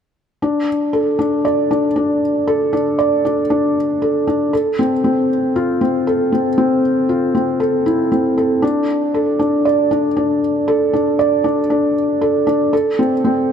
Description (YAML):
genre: electronica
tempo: 117 BPM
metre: 4/4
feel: straight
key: D minor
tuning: A4 = 439 Hz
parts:
  - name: felt-muted upright piano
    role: solo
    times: 0.4-13.5 s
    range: C4 to D5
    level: -14 LUFS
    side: equal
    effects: none
room: moderate huge ambient reverb, RT60 4.7 s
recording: none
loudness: -14 LUFS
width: side -8 dB against mid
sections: 0.4-13.5 A section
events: none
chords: none